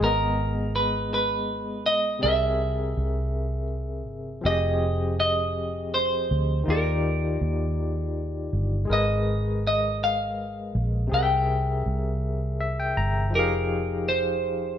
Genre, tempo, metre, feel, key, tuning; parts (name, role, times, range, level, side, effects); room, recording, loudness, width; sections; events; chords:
slow six-eight R&B; 54 BPM (dotted quarters); 6/8; straight; A4 = 440 Hz
semi-hollow electric guitar; melody; 0.0-14.8 s; Bb4 to G5; -25 LUFS; right 1 dB; slapback echo
barky tine electric piano; accompaniment; 0.0-14.8 s; C3 to Bb5; -29 LUFS; left 2 dB; medium tremolo
vintage muted fingered electric bass; bass; 0.0-14.8 s; F1 to Eb2; -27 LUFS; equal
light reverb; nothing above 10.6 kHz; -23 LUFS; side -9 dB against mid
0.0-14.8 A section
tine electric piano fill 12.2-13.3
0.0 Abmadd9; 2.2 C7b13; 4.4 Fm9; 6.7 Ebmaj7; 8.9 Abmadd9; 11.1 C7b13; 13.3 Fm9